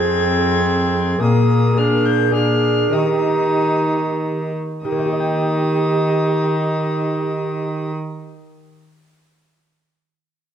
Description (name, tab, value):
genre	classical, renaissance-style consort dance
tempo	88-111 BPM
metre	3/4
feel	straight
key	Eb major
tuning	A4 = 444 Hz
part	dark violin	melody	0.0-7.9 s	Eb6 to Ab6	-26 LUFS	left 2 dB	none
part	mellow tenor recorder	second line	0.0-7.9 s	G4 to Ab4	-22 LUFS	right 2 dB	none
part	lute	accompaniment	0.0-8.3 s	F2 to G5	-25 LUFS	left 3 dB	none
part	warm viola	accompaniment	0.0-7.9 s	Bb3 to Eb4	-23 LUFS	left 1 dB	none
part	rich cello	bass	0.0-7.9 s	F2 to Eb3	-21 LUFS	right 1 dB	none
room	wet recital hall reverb, RT60 1.6 s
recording	dark, warm production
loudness	-16 LUFS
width	side -9 dB against mid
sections	0.0-4.8 A section; 4.8-8.9 B section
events	slowing down 0.4-4.8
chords	0.0 Fm; 1.2 Bb7sus4; 1.8 Bb7; 2.9 Eb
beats	0.14 0.68 | 1.23 1.78 2.35 | 2.94 3.55 4.18 | 4.85 5.53 6.20 | 6.88 7.56 8.23